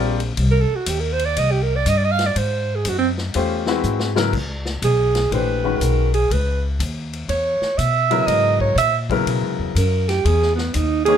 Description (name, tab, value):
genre	modal jazz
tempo	121 BPM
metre	4/4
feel	swing 66% on 8ths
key	C# dorian from 4.3 s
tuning	A4 = 438 Hz
part	clear baby grand piano	accompaniment	0.0-0.2, 3.3-11.2 s	Db3 to D5	-21 LUFS	left 6 dB	none
part	upright bass	bass	0.0-11.2 s	Bb1 to B2	-21 LUFS	left 1 dB	none
part	vintage drum kit	drums	0.2-11.1 s	crash cymbal, hi-hat, kick drum, ride cymbal, snare drum	-29 LUFS	left 4 dB	none
part	mellow alto saxophone	second line	0.5-11.2 s	B3 to F5	-19 LUFS	right 5 dB	none
room	light reverb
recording	none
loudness	-17 LUFS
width	side -8 dB against mid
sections	0.0-4.3 A section; 4.3-11.2 A section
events	alto saxophone solo 0.0-11.2; drum fill 3.8-4.3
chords	0.0 Cm7; 2.4 Ab7alt; 4.3 C#m11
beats	| 0.37 0.87 1.36 1.86 | 2.35 2.85 3.34 3.83 | 4.33 4.82 5.32 5.81 | 6.30 6.80 7.29 7.79 | 8.28 8.77 9.27 9.76 | 10.26 10.75